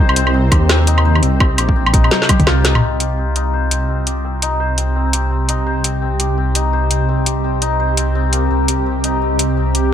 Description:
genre	half-time drum and bass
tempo	169 BPM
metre	4/4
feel	swing 59% on 16ths, half-time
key	C minor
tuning	A4 = 440 Hz
part	bowed-like drone	sustained chords	0.0-9.9 s	C3 to G5	-22 LUFS	right 1 dB	built-in reverb, sidechain pumping
part	santur	arpeggios	0.0-9.9 s	Bb3 to C5	-21 LUFS	left 4 dB	low-pass filter, digital delay
part	dark detuned saw bass	bass	0.0-9.9 s	Bb1 to Eb2	-17 LUFS	equal	none
part	drum and bass drum kit	drums	0.1-9.8 s	hi-hat, snare drum, toms, woodblock	-16 LUFS	equal	none
part	electronic kick drum	drums	0.5-2.5 s	none	-13 LUFS	equal	overdrive
room	light reverb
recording	none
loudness	-13 LUFS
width	side -9 dB against mid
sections	0.0-2.8 A section; 2.8-9.9 B section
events	drum fill 2.1-2.8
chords	0.0 C5

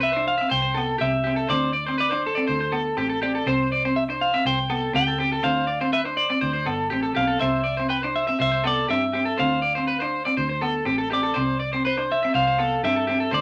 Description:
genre	highlife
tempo	122 BPM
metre	4/4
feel	straight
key	C major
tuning	A4 = 444 Hz
part	clean electric guitar	melody	0.0-13.4 s	A4 to G5	-27 LUFS	equal	none
part	clean electric guitar	accompaniment	0.0-13.4 s	B3 to D4	-30 LUFS	equal	none
part	electric guitar at the edge of break-up	arpeggios	0.0-13.4 s	G4 to E5	-28 LUFS	equal	vibrato effect
part	fingered electric bass	bass	0.0-13.4 s	G1 to G2	-33 LUFS	equal	none
room	moderate studio reverb, RT60 0.5 s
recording	none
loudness	-23 LUFS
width	mono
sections	0.0-13.4 A section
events	none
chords	0.0 C; 1.5 D5; 3.5 C5; 5.4 Dm; 7.4 C; 9.4 Dm; 11.4 C

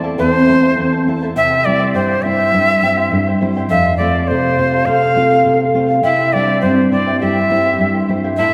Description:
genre	andean folk, Andean ensemble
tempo	103 BPM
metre	2/4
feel	straight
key	unclear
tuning	A4 = 438 Hz
part	charango	accompaniment	0.0-8.5 s	E4 to A5	-24 LUFS	equal	none
part	nylon-string guitar	accompaniment	0.0-8.5 s	E2 to F4	-20 LUFS	equal	none
part	bright quena	melody	0.2-8.5 s	C5 to F5	-18 LUFS	equal	tape echo
part	mellow hollow pan flute	second line	0.2-1.0, 4.9-8.5 s	C4 to A4	-20 LUFS	equal	tape echo
room	wet concert hall reverb, RT60 2.1 s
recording	heard from further back in the room, faint mains hum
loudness	-14 LUFS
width	mono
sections	0.0-1.4 A section; 1.4-8.5 A section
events	none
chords	0.0 Am; 1.4 C; 3.7 F; 6.1 C

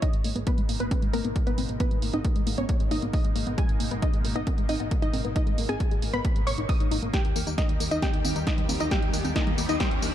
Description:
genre	uplifting trance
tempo	135 BPM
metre	4/4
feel	straight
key	G# minor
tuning	A4 = 440 Hz
part	wide unison pluck	melody	0.0-10.1 s	A#3 to D#6	-32 LUFS	equal	sidechain pumping, tape echo
part	supersaw stab	second line	0.0-10.1 s	A#4 to D#6	-40 LUFS	right 1 dB	sidechain pumping, low-pass filter, tape echo
part	lush unison pad	sustained chords	0.0-10.1 s	B2 to G4	-36 LUFS	equal	chorus, phaser, sidechain pumping
part	tight sequenced synth	arpeggios	0.0-10.1 s	G3 to A#4	-34 LUFS	left 4 dB	chorus, phaser, sidechain pumping, tape echo
part	electronic kick drum	drums	0.0-9.9 s	none	-26 LUFS	equal	none
part	punchy analog drum machine	drums	0.0-10.1 s	congas, hi-hat, snare drum, tambourine	-33 LUFS	right 2 dB	none
part	solid FM bass	bass	0.1-10.1 s	G#1 to D#2	-34 LUFS	equal	sidechain pumping
part	riser	sound effects	8.2-10.1 s	none	-35 LUFS	left 1 dB	none
room	light reverb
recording	dark, warm production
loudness	-23 LUFS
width	side -11 dB against mid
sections	0.0-10.1 A section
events	build-up 0.0-10.1; filter sweep on synth pluck 0.0-10.1; filter sweep on synth arpeggio sound 0.0-10.1; filter sweep on supersaw synth 0.0-10.1; drum fill 7.1-10.1; riser 8.2-10.1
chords	0.0 G#madd9; 7.1 D#

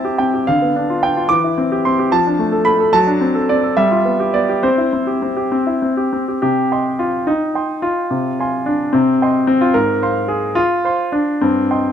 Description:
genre	classical-period piano sonatina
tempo	66-74 BPM (dotted quarters)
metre	6/8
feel	rubato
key	C major, C minor from 6.4 s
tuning	A4 = 441 Hz
part	clear concert grand piano	solo	0.0-11.9 s	G2 to D6	-14 LUFS	equal	none
room	light reverb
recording	close, detailed microphones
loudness	-14 LUFS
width	side -9 dB against mid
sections	0.0-6.4 A section; 6.4-11.9 B section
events	none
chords	0.5 Dmadd11; 1.3 C/E; 2.1 Dm/F; 2.9 D7/F#; 3.8 G7; 4.7 C; 6.4 Cm; 8.1 Fm/C; 8.9 Cm; 9.7 Fm/Ab; 11.4 Cm/G

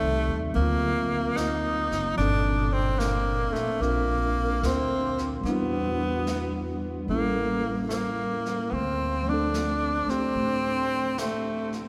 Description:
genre	jazz ballad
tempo	74 BPM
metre	4/4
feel	swing 67% on 8ths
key	unclear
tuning	A4 = 440 Hz
part	bright tenor saxophone	melody	0.0-11.8 s	A3 to Eb4	-30 LUFS	equal	none
part	tine electric piano	accompaniment	0.0-11.9 s	Bb2 to Bb4	-32 LUFS	equal	none
part	upright bass	bass	0.0-11.9 s	F#1 to A2	-33 LUFS	equal	none
part	jazz brush drum kit	drums	0.6-11.9 s	brushed snare drum, hi-hat, snare drum	-43 LUFS	equal	none
room	wet cathedral reverb, RT60 5.0 s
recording	recorded in a church or concert hall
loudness	-26 LUFS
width	mono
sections	0.0-11.9 A section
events	none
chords	0.0 Am7b5; 0.6 D7alt; 2.2 Gm11; 5.4 Em7; 7.1 A7b9; 8.7 Dm7

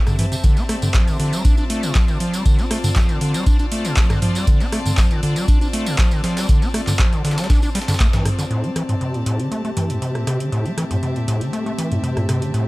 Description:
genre	acid house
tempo	119 BPM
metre	4/4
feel	straight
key	A minor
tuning	A4 = 440 Hz
part	rich chamber string section	texture	0.0-12.7 s	C4 to A5	-28 LUFS	left 1 dB	sidechain pumping
part	overdriven acid bass	riff	0.1-12.7 s	G2 to D4	-22 LUFS	equal	tube saturation, sidechain pumping, tape echo
part	booming analog drum machine	drums	0.1-12.6 s	handclaps, hi-hat, rim click, toms	-24 LUFS	equal	none
part	breakbeat sampler-style drum kit	drums	0.1-8.5 s	hi-hat, snare drum	-35 LUFS	equal	none
part	tambourine	percussion	0.1-8.5 s	none	-32 LUFS	right 2 dB	none
part	electronic kick drum	drums	0.4-8.1 s	none	-16 LUFS	equal	none
part	dark analog pad	sustained chords	8.5-12.7 s	A3 to C5	-33 LUFS	equal	wide subtle chorus, sidechain pumping
room	digital ambience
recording	none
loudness	-16 LUFS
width	side -20 dB against mid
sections	0.0-8.5 A section; 8.5-12.7 B section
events	drop 0.0-8.5; band accent 8.0; filter sweep on analog synth pad 8.5-12.7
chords	0.4 Dm7; 8.5 Am7

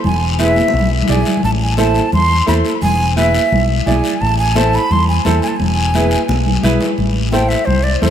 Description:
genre	latin, cumbia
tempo	173 BPM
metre	4/4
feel	straight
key	unclear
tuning	A4 = 440 Hz
part	fingered electric bass	bass	0.0-8.1 s	E1 to E2	-16 LUFS	equal	none
part	congas	percussion	0.0-8.1 s	none	-20 LUFS	left 2 dB	none
part	guiro	percussion	0.0-8.1 s	none	-26 LUFS	left 6 dB	none
part	breathy jazz flute	melody	0.1-8.1 s	A4 to C6	-18 LUFS	right 1 dB	ping-pong delay
part	clear upright piano	accompaniment	0.4-8.1 s	E4 to D5	-19 LUFS	right 2 dB	lush chorus
room	moderate plate reverb, RT60 3.5 s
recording	dreamy mix soaked in reverb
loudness	-12 LUFS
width	side -9 dB against mid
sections	0.0-7.0 A section; 7.0-8.1 B section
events	drum fill 0.6-1.4, 6.3-7.0; flute solo 7.0-8.1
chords	0.0 E7; 1.4 Am; 2.8 E7; 4.2 Am; 5.6 E; 7.0 Am

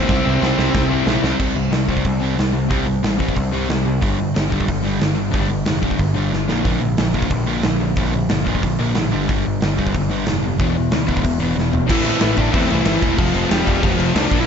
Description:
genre	punk rock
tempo	183 BPM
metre	4/4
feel	straight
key	C major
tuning	A4 = 442 Hz
part	high-gain lead guitar	melody	0.0-1.0, 11.9-14.5 s	E3 to D5	-22 LUFS	equal	distortion
part	crunchy overdriven guitar	riff	0.0-14.5 s	G2 to F4	-22 LUFS	left 10 dB	none
part	sludgy distorted guitar	riff	0.0-14.5 s	E2 to C4	-23 LUFS	right 12 dB	overdrive
part	growling picked electric bass	bass	0.0-14.4 s	E1 to E2	-24 LUFS	equal	overdrive
part	high-gain distorted guitar	riff	0.1-1.4, 11.9-14.5 s	F2 to C4	-26 LUFS	equal	distortion
part	big rock drum kit	drums	0.1-14.4 s	crash cymbal, hi-hat, kick drum, snare drum, toms	-21 LUFS	right 1 dB	none
room	little or no reverb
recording	nothing above 7.7 kHz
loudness	-16 LUFS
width	side -7 dB against mid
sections	0.0-1.4 A section; 1.4-11.9 B section; 11.9-14.5 A section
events	drum fill 0.1-1.4, 6.3-6.7, 11.6-11.9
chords	0.1 C; 1.4 C5; 4.0 G5; 6.5 Bb; 9.1 G5; 10.6 E5; 11.9 Am; 13.2 F

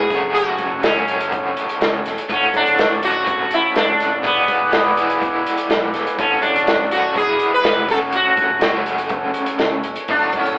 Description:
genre	psychedelic rock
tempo	123 BPM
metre	4/4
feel	straight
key	unclear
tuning	A4 = 440 Hz
part	sitar	melody	0.0-10.6 s	B3 to B4	-18 LUFS	equal	none
part	hand-pumped harmonium	sustained chords	0.0-10.6 s	A4 to A5	-24 LUFS	equal	none
part	overdriven electric guitar	riff	0.0-10.6 s	D2 to F#4	-21 LUFS	equal	tremolo
part	picked electric bass	bass	0.0-10.6 s	D1 to C#2	-37 LUFS	equal	none
part	vintage drum kit	drums	0.1-10.6 s	hi-hat, kick drum, snare drum	-22 LUFS	equal	none
room	moderate stone room reverb, RT60 1.0 s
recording	band playing live in one room, telephone sound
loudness	-15 LUFS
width	side -26 dB against mid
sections	0.0-10.6 A section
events	none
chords	0.1 F#madd9; 2.3 Dmaj7; 4.2 E7; 6.2 Dmaj7; 7.2 E7; 7.9 F#madd9

